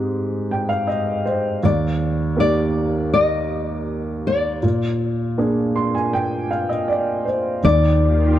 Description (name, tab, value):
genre	folk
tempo	80 BPM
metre	4/4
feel	straight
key	Eb major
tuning	A4 = 440 Hz
part	nylon-string guitar	melody	0.0-8.4 s	D5 to Eb5	-21 LUFS	left 4 dB	none
part	warm upright piano	accompaniment	0.0-8.4 s	Eb2 to C6	-20 LUFS	right 1 dB	none
part	analog string pad	sustained chords	7.6-8.4 s	Eb3 to G4	-24 LUFS	right 2 dB	ensemble chorus
part	mellow fretless electric bass	bass	7.6-8.4 s	Eb2	-16 LUFS	equal	none
room	moderate plate reverb, RT60 2.8 s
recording	faint mains hum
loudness	-18 LUFS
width	side -12 dB against mid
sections	0.0-7.6 A section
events	none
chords	0.0 Abmaj7; 1.6 Ebmaj7; 4.6 Bb7; 7.6 Ebmaj7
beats	0.14 0.88 | 1.63 2.38 3.13 3.88 | 4.63 5.38 6.13 6.88 | 7.64 8.39